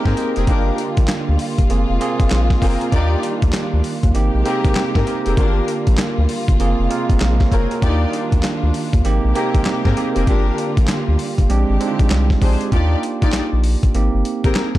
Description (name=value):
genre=R&B, new jack swing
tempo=98 BPM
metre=4/4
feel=swing 63% on 16ths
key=Eb major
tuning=A4 = 440 Hz
part: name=bell-like tine electric piano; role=accompaniment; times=0.0-14.8 s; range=Ab3 to G5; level=-22 LUFS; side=right 5 dB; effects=none
part: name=warm studio string section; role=sustained chords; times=0.0-12.7 s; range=C3 to G4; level=-26 LUFS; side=left 2 dB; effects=none
part: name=warm studio string section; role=stabs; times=0.1-14.6 s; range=C4 to D5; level=-24 LUFS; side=left 4 dB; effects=digital delay
part: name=round analog bass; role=bass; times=0.1-14.8 s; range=F1 to Ab2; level=-18 LUFS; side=equal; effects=none
part: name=boom bap sampler-style drum kit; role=drums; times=0.1-14.8 s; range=handclaps, hi-hat, kick drum, snare drum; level=-18 LUFS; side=equal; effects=none
room=little or no reverb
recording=dark, warm production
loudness=-15 LUFS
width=side -15 dB against mid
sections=0.0-12.7 A section; 12.7-14.8 B section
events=none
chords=0.5 Gm7; 1.7 Gbmaj9#11; 2.9 Ebmaj9; 4.1 Abmaj9; 5.4 Gm7; 6.6 Gbmaj9#11; 7.8 Ebmaj9; 9.0 Abmaj9; 10.3 Gm7; 11.5 Bb13; 12.7 Ebmaj9; 13.9 Abmaj9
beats=| 0.48 1.09 1.70 2.31 | 2.92 3.54 4.15 4.76 | 5.37 5.99 6.60 7.21 | 7.82 8.44 9.05 9.66 | 10.27 10.88 11.50 12.11 | 12.72 13.33 13.95 14.56